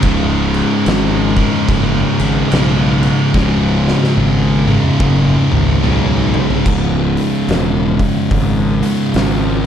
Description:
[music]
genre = stoner and doom metal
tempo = 72 BPM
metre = 4/4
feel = swing 62% on 8ths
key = unclear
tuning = A4 = 439 Hz
[part]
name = heavy high-gain guitar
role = riff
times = 0.0-6.6 s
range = C#2 to C#3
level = -21 LUFS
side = equal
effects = distortion
[part]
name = thick fuzz guitar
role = riff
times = 0.0-9.7 s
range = C#2 to C#3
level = -17 LUFS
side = left 8 dB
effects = distortion
[part]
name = thick fuzz guitar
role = riff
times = 0.0-9.7 s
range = C#2 to C#3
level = -17 LUFS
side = right 7 dB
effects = distortion
[part]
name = fuzz fingered electric bass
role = bass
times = 0.0-9.6 s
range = C#1 to B1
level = -18 LUFS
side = equal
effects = overdrive
[part]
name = oversized low-tuned drum kit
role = drums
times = 0.0-9.4 s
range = crash cymbal, hi-hat, kick drum, snare drum, toms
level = -18 LUFS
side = equal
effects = none
[sound]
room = light reverb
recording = dark, warm production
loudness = -12 LUFS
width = side -9 dB against mid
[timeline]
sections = 0.0-6.7 A section; 6.7-9.7 B section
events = drum fill 3.3-6.7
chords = 0.0 C#5; 6.7 C#m

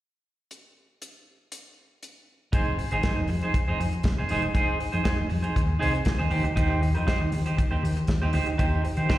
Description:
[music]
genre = disco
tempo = 119 BPM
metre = 4/4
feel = straight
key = F dorian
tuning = A4 = 440 Hz
[part]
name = warm soul drum kit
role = drums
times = 0.5-9.2 s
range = hi-hat, kick drum, snare drum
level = -27 LUFS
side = equal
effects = none
[part]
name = clean electric guitar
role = accompaniment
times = 2.5-9.2 s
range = Eb4 to C5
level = -28 LUFS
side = right 2 dB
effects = tremolo, slapback echo
[part]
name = hollow-body short-scale fingered electric bass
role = bass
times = 2.5-9.1 s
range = E1 to Eb3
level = -26 LUFS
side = equal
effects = none
[sound]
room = light reverb, small room ambience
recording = live gig heard through the venue's PA, recital hall reverb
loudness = -23 LUFS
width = side -15 dB against mid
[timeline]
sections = 0.5-2.5 A section; 2.5-9.2 B section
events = none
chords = 0.5 N.C.; 2.5 Fm7; 6.3 Eb6

